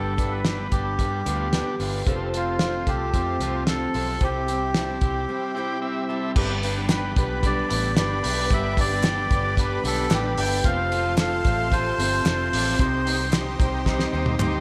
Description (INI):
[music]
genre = jangly indie pop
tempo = 112 BPM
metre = 4/4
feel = straight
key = G mixolydian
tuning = A4 = 440 Hz
[part]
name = melodica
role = melody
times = 0.0-13.3 s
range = F4 to G5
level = -30 LUFS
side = equal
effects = none
[part]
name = overdriven combo organ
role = accompaniment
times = 0.0-14.6 s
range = B3 to G5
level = -35 LUFS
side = equal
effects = slapback echo
[part]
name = picked steel-string acoustic guitar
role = accompaniment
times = 0.0-14.6 s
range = F2 to E4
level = -35 LUFS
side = equal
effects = none
[part]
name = electric guitar through a small old amp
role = arpeggios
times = 0.0-14.6 s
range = G2 to A4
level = -33 LUFS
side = equal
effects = spring reverb, slapback echo
[part]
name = vintage muted fingered electric bass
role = bass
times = 0.0-14.6 s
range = F1 to G2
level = -31 LUFS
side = equal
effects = none
[part]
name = cloth-damped thuddy drum kit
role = drums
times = 0.2-14.5 s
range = crash cymbal, hi-hat, kick drum, snare drum, toms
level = -27 LUFS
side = equal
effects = none
[part]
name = lush unison pad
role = sustained chords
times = 6.4-14.6 s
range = G4 to C6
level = -37 LUFS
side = equal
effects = chorus
[part]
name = group handclap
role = percussion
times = 6.9-14.5 s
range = none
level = -42 LUFS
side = equal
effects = none
[sound]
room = moderate lush hall reverb, RT60 1.8 s, studio ambience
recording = big arena sound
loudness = -24 LUFS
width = mono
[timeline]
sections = 0.0-6.4 A section; 6.4-14.6 B section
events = break 5.3-6.4; transistor combo organ fill 5.3-6.4; drum fill 13.9-14.6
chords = 0.0 G; 2.1 F; 4.2 C; 6.4 G; 10.6 F; 12.8 Cm